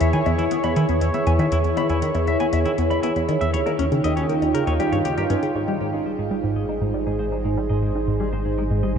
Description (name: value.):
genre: ambient, sequencer-driven space music.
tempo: 119 BPM.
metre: 4/4.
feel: straight.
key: E major, Ab major from 5.6 s.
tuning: A4 = 440 Hz.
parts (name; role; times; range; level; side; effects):
sweeping resonant pad; sustained chords; 0.0-9.0 s; D#3 to C#6; -23 LUFS; right 1 dB; chorus, shimmer reverb.
clean electric guitar; arpeggios; 0.0-9.0 s; Ab3 to B5; -29 LUFS; left 2 dB; auto-pan, shimmer reverb, tape echo.
tight sequenced synth; riff; 0.0-9.0 s; D#2 to Eb4; -23 LUFS; equal; chorus, phaser, tape echo.
electronic hi-hat and woodblock; percussion; 0.0-5.5 s; none; -37 LUFS; left 5 dB; tape echo.
round analog bass; bass; 5.6-9.0 s; Ab1; -29 LUFS; equal; none.
wind-like tuned noise texture; texture; 6.9-9.0 s; Eb5; -48 LUFS; right 3 dB; none.
room: wet cathedral reverb, RT60 4.9 s.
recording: dreamy mix soaked in reverb, cassette tape.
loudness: -19 LUFS.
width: side -7 dB against mid.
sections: 0.0-5.6 A section; 5.6-9.0 B section.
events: none.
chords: 0.0 E; 3.5 D#7; 5.6 Ab.